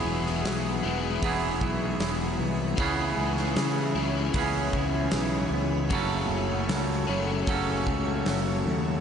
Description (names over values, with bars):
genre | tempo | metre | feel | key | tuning
rock, shoegaze and dream pop | 77 BPM | 4/4 | straight | E major | A4 = 442 Hz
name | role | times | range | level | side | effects
icy glass pad | sustained chords | 0.0-9.0 s | G#4 to C#6 | -36 LUFS | equal | chorus, built-in reverb
direct-recorded clean electric guitar | arpeggios | 0.0-9.0 s | E3 to A4 | -37 LUFS | right 6 dB | wide subtle chorus, slapback echo
overdriven electric guitar | riff | 0.0-9.0 s | E2 to F#4 | -30 LUFS | left 8 dB | analog chorus
twangy electric guitar | riff | 0.0-9.0 s | F#2 to A4 | -31 LUFS | right 8 dB | reverse reverb
fuzz fingered electric bass | bass | 0.0-9.0 s | E1 to C#3 | -30 LUFS | equal | overdrive
huge arena drum kit | drums | 0.3-8.4 s | hi-hat, kick drum, snare drum | -32 LUFS | equal | none
room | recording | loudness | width
moderate huge ambient reverb, RT60 6.6 s | nothing above 10.3 kHz | -24 LUFS | side -7 dB against mid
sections
0.0-9.0 A section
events
none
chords
0.0 Eadd9; 2.8 C#m7; 5.9 F#m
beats
0.45 1.23 2.01 | 2.79 3.57 4.35 5.13 | 5.91 6.69 7.47 8.26